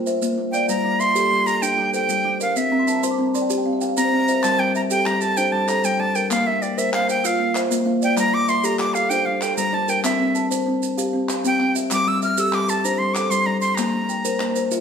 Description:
southern african traditional, mbira-style interlocking cycle; 128 BPM (dotted quarters); 12/8; straight; G dorian; A4 = 440 Hz
kalimba; arpeggios; 0.0-14.8 s; G3 to A5; -23 LUFS; left 4 dB
kalimba; arpeggios; 0.0-14.8 s; G3 to E6; -25 LUFS; right 2 dB
maracas; percussion; 0.1-14.8 s; -31 LUFS; right 8 dB
breathy bright jazz flute; melody; 0.5-14.7 s; D5 to F6; -21 LUFS; right 2 dB
group handclap; percussion; 4.4-14.5 s; -32 LUFS; left 2 dB
wet large studio reverb, RT60 1.3 s; band playing live in one room; -18 LUFS; side -7 dB against mid
0.0-4.4 A section; 4.4-14.8 B section
kalimba fill 2.6-4.4
0.0 Bb; 0.7 Gm; 2.6 C; 4.4 Gm; 6.3 Bb; 8.2 Gm; 10.0 C; 11.9 G5; 13.8 Bb

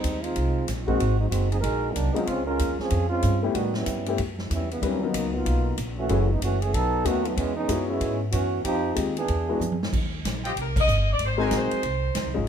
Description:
jazz, big band swing; 188 BPM; 4/4; swing 63% on 8ths; A4 = 440 Hz
mellow trombone section; second line; 0.0-9.8 s; C#3 to Bb4; -27 LUFS; right 2 dB
upright bass; bass; 0.0-12.5 s; Gb1 to A2; -27 LUFS; equal
swinging big-band drum kit; drums; 0.0-12.2 s; crash cymbal, hi-hat, kick drum, ride cymbal, snare drum, toms; -32 LUFS; equal
warm upright piano; accompaniment; 0.9-12.5 s; F#3 to Eb5; -28 LUFS; left 6 dB
bright trumpet section; stabs; 10.4-11.8 s; F4 to Ab5; -34 LUFS; equal
warm saxophone section; melody; 10.5-12.3 s; G4 to Eb5; -26 LUFS; equal
light reverb; minimal, uncompressed stereo recording; -22 LUFS; side -8 dB against mid
0.0-9.9 A section; 9.9-12.5 B section
trombone section solo 0.0-9.9; drum fill 9.6-9.9; band accent 10.7
0.0 Fm9; 1.0 Ab7; 2.3 Dbmaj7; 3.5 A9; 4.8 Bmaj7; 6.1 Gbm7; 6.7 B7; 7.4 E6; 8.6 Fm7; 9.3 E7; 9.9 Eb6; 11.2 Ab7

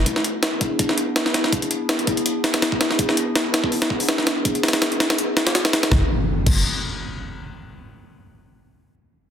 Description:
drum and bass, jungle; 164 BPM; 4/4; swing 54% on 16ths; A4 = 437 Hz
warbly tape-like pad; sustained chords; 0.0-6.1 s; B3 to G#4; -26 LUFS; left 1 dB; chorus, built-in reverb, vintage 12-bit sampler grit
long sustained 808-style bass; bass; 0.0, 5.9-6.6 s; F#1; -20 LUFS; equal; tube saturation
jungle sampler-style drum kit; drums; 0.1-6.5 s; crash cymbal, hi-hat, kick drum, snare drum; -20 LUFS; equal; high-pass filter on kick, high-pass filter on hats, high-pass filter on snare, high-pass filter on cymbals, high-pass filter on room
impact; sound effects; 5.9-7.4 s; -26 LUFS; equal
light reverb; dense, heavily limited modern master; -18 LUFS; side -8 dB against mid
0.0-5.9 A section; 5.9-7.4 B section
0.1 E7; 5.9 F#m7

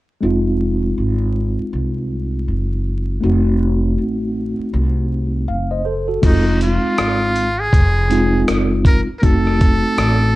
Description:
hip hop, jazz-hop; 80 BPM; 4/4; swing 61% on 16ths; F phrygian; A4 = 440 Hz
mellow tine electric piano; accompaniment; 0.2-10.4 s; Ab3 to F5; -19 LUFS; equal; medium stereo tremolo
upright bass; bass; 0.2-10.4 s; F1 to C2; -19 LUFS; equal
dusty soul sampler-style drum kit; drums; 6.2-10.2 s; crash cymbal, hi-hat, kick drum, rim click; -17 LUFS; equal
trumpet with metal mute; melody; 6.3-10.4 s; Eb4 to Bb4; -20 LUFS; equal
light reverb; dark, warm production, vinyl crackle; -15 LUFS; side -18 dB against mid
0.2-6.2 A section; 6.2-10.4 B section
0.2 Fm7; 3.2 F7b9; 6.2 Fm7; 9.2 F7b9

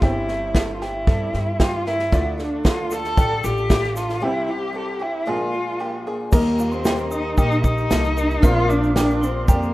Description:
indie folk with a building arrangement; 114 BPM; 4/4; straight; A4 = 443 Hz
warm cello; melody; 0.0-9.7 s; Bb3 to A4; -23 LUFS; equal
picked twelve-string acoustic guitar; accompaniment; 0.0-9.7 s; G2 to Bb4; -31 LUFS; left 4 dB
warm upright piano; accompaniment; 0.0-9.7 s; G1 to Eb5; -30 LUFS; equal
open-back banjo; arpeggios; 0.0-9.7 s; F4 to Bb4; -31 LUFS; right 2 dB
upright bass; bass; 0.0-9.7 s; G1 to G2; -25 LUFS; equal
natural country drum kit; drums; 0.0-9.6 s; crash cymbal, kick drum, snare drum; -20 LUFS; equal
egg shaker; percussion; 2.1-9.7 s; -40 LUFS; equal
glockenspiel with hard plastic mallets; second line; 6.3-9.7 s; Bb5 to F6; -32 LUFS; right 1 dB
mellow tonewheel organ; sustained chords; 6.3-9.7 s; G4 to C6; -30 LUFS; equal; slow rotary speaker
light reverb; rough home demo mix; -18 LUFS; side -17 dB against mid
0.0-6.3 A section; 6.3-9.7 B section
break 4.2-6.3
0.0 C/G; 2.1 Dm; 4.2 C; 5.3 Bb7; 6.3 Eb; 8.4 Bbadd9

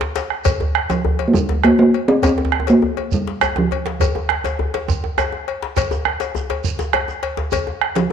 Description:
west african traditional, West African drum ensemble; 136 BPM (dotted quarters); 12/8; straight; A4 = 441 Hz
djembe; percussion; 0.0-8.1 s; -26 LUFS; left 6 dB
djembe; percussion; 0.0-8.1 s; -24 LUFS; right 2 dB
bombo; percussion; 0.2-7.9 s; -22 LUFS; right 5 dB
cowbell; percussion; 0.2-8.1 s; -26 LUFS; left 9 dB
shekere; percussion; 0.2-8.0 s; -30 LUFS; right 3 dB
talking drum; melody; 0.9-3.9, 8.0-8.1 s; F3 to C4; -16 LUFS; right 1 dB
wet echo chamber reverb, RT60 1.6 s, small room reverb; 1960s-style stereo; -16 LUFS; side -8 dB against mid
0.5-8.1 A section
drum fill 0.0-0.5

